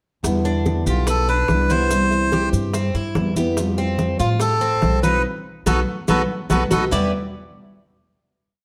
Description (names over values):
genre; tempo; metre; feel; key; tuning
latin, Cuban son and guajira; 144 BPM; 4/4; straight; E phrygian; A4 = 442 Hz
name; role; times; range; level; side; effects
nylon-string guitar; accompaniment; 0.2-7.1 s; E2 to F4; -26 LUFS; equal; none
upright bass; bass; 0.2-7.1 s; B1 to A2; -25 LUFS; equal; none
bongos; percussion; 0.2-7.0 s; none; -34 LUFS; equal; none
congas; percussion; 0.2-7.0 s; none; -29 LUFS; equal; none
maracas; percussion; 0.2-7.0 s; none; -37 LUFS; equal; none
Cuban tres; arpeggios; 0.5-7.1 s; B3 to D5; -29 LUFS; equal; none
melodica; melody; 0.9-7.1 s; F4 to C5; -24 LUFS; equal; none
room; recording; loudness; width
wet large studio reverb, RT60 1.3 s; none; -20 LUFS; mono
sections
0.2-6.9 A section; 6.9-8.6 final chord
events
band accent 5.2-6.9; drum fill 6.3-6.9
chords
0.2 Em7; 1.9 Cmaj7; 3.6 Fadd9; 5.2 B7; 6.9 E7(no3)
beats
| 0.24 0.66 1.07 1.49 | 1.91 2.32 2.74 3.16 | 3.57 3.99 4.41 4.83 | 5.24 5.66 6.08 6.50 | 6.92